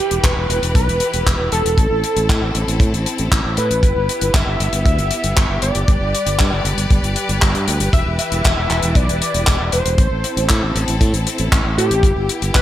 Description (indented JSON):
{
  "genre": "italo disco",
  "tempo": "117 BPM",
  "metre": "4/4",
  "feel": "straight",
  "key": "E minor",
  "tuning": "A4 = 440 Hz",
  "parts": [
    { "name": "wide unison lead", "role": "melody", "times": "0.0-12.6 s", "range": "G4 to E5", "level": "-21 LUFS", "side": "equal", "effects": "lush chorus, vintage 12-bit sampler grit, tape echo" },
    { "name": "clear studio string section", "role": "sustained chords", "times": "0.0-12.6 s", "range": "E3 to D5", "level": "-25 LUFS", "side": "left 1 dB", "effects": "none" },
    { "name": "modern bright fingered electric bass", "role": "bass", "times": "0.1-12.6 s", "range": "E1 to A2", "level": "-20 LUFS", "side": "equal", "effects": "none" },
    { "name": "damped 70s drum kit", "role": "drums", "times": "0.1-12.6 s", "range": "handclaps, hi-hat", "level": "-21 LUFS", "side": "left 2 dB", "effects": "gated reverb" },
    { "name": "kick drum", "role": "drums", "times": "0.2-12.6 s", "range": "none", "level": "-15 LUFS", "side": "equal", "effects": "none" }
  ],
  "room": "small room ambience",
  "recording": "none",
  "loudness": "-14 LUFS",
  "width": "side -12 dB against mid",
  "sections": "0.0-12.6 A section",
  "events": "none",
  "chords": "0.0 Em; 1.8 Am; 3.8 Em/G; 5.9 G; 7.9 Em; 10.0 Am; 12.0 Em/G"
}